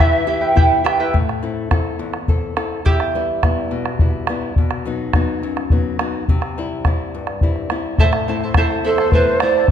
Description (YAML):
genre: andean folk, Andean ensemble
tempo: 70 BPM (dotted quarters)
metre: 6/8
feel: straight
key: unclear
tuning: A4 = 439 Hz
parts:
  - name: mellow hollow polished pan flute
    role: melody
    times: 0.0-0.6, 8.9-9.7 s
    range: A4 to E5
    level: -19 LUFS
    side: right 4 dB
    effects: tape echo
  - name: bright large quena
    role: second line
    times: 0.0-0.6, 8.8-9.7 s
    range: C5 to E5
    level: -23 LUFS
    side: left 4 dB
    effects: none
  - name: charango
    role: accompaniment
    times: 0.0-4.2, 8.0-9.7 s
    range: E4 to A5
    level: -20 LUFS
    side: right 3 dB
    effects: none
  - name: nylon-string guitar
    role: accompaniment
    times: 0.0-9.7 s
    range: E2 to A4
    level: -24 LUFS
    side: left 5 dB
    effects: none
  - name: bombo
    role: percussion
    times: 0.0-9.7 s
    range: none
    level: -18 LUFS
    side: equal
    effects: none
room: moderate recital hall reverb, RT60 1.5 s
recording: dark, warm production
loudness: -16 LUFS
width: side -9 dB against mid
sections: 0.0-1.1 A section; 1.1-8.0 B section; 8.0-9.7 C section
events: charango solo 1.1-8.0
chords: 0.0 Em; 1.1 Am; 2.9 Em; 4.6 B; 6.3 C; 8.0 Am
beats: 0.27 | 1.13 1.99 | 2.85 3.71 | 4.57 5.43 | 6.28 7.14 | 7.99 8.85 | 9.70